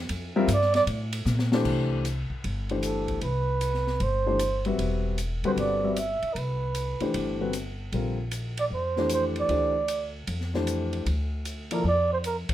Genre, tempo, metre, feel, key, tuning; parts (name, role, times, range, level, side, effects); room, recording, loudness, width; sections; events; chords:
modal jazz; 153 BPM; 4/4; swing 66% on 8ths; C major; A4 = 440 Hz
upright bass; bass; 0.0-12.5 s; E1 to Bb2; -29 LUFS; equal
open jazz drum kit; drums; 0.1-12.5 s; crash cymbal, hi-hat, kick drum, ride cymbal, snare drum; -35 LUFS; left 1 dB
warm grand piano; accompaniment; 0.4-11.8 s; D3 to E5; -28 LUFS; left 3 dB
trumpet with bucket mute; melody; 0.5-12.4 s; A4 to E5; -26 LUFS; right 4 dB
light reverb; -24 LUFS; side -12 dB against mid
0.0-1.7 A section; 1.7-12.5 B section
muted trumpet solo 0.0-1.7; drum fill 1.3-1.7
0.0 Bbmaj7sus2; 1.7 Cmaj9; 7.9 Bbmaj9